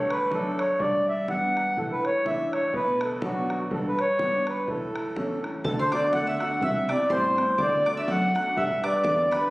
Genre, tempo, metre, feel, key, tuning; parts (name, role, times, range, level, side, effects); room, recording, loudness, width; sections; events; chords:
celtic folk, Celtic polka; 124 BPM; 2/4; swing 56% on 8ths; A mixolydian, D mixolydian from 5.7 s; A4 = 440 Hz
mellow accordion; melody; 0.0-9.5 s; F#4 to F#5; -24 LUFS; equal
clear upright piano; accompaniment; 0.0-9.5 s; D2 to B4; -30 LUFS; equal
bodhran; percussion; 0.1-9.4 s; -37 LUFS; equal
mandolin; second line; 5.6-9.5 s; F#5 to E6; -32 LUFS; equal; tape echo
bell-like tine electric piano; bass; 5.6-9.3 s; C2 to A2; -31 LUFS; equal
wet recital hall reverb, RT60 1.6 s; recorded on a phone in the room, studio reverb; -23 LUFS; side -21 dB against mid
0.0-5.7 A section; 5.7-9.5 B section
0.0 D; 0.8 G; 1.8 Asus4; 2.7 Bm; 3.7 G; 4.7 A; 5.7 D; 6.6 C; 7.6 D; 8.6 G